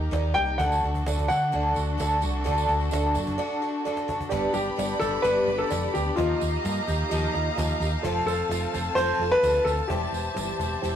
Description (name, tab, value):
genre	folk rock and heartland rock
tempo	129 BPM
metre	4/4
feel	straight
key	G mixolydian from 4.3 s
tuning	A4 = 440 Hz
part	picked twelve-string acoustic guitar	accompaniment	0.0-11.0 s	F2 to G4	-30 LUFS	left 1 dB	none
part	rich studio string section	sustained chords	0.0-11.0 s	C4 to B5	-32 LUFS	equal	none
part	hollow-body short-scale fingered electric bass	bass	0.0-11.0 s	E1 to D3	-28 LUFS	equal	none
part	reed electric piano	accompaniment	0.1-11.0 s	E4 to Eb5	-33 LUFS	right 5 dB	fast tremolo
part	cajon	drums	0.1-10.9 s	none	-38 LUFS	equal	none
part	warm grand piano	melody	0.3-10.5 s	F4 to G5	-25 LUFS	left 1 dB	none
part	tambourine	percussion	0.6-10.9 s	none	-42 LUFS	right 6 dB	none
room	moderate studio reverb, RT60 0.6 s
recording	rough rehearsal-room recording, tube saturation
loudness	-23 LUFS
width	side -9 dB against mid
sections	0.0-4.3 A section; 4.3-11.0 B section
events	break 3.4-4.3; drum fill 3.9-4.3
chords	0.0 Eb; 0.6 D; 4.3 G; 6.2 Ebadd9; 8.0 F; 9.9 C/E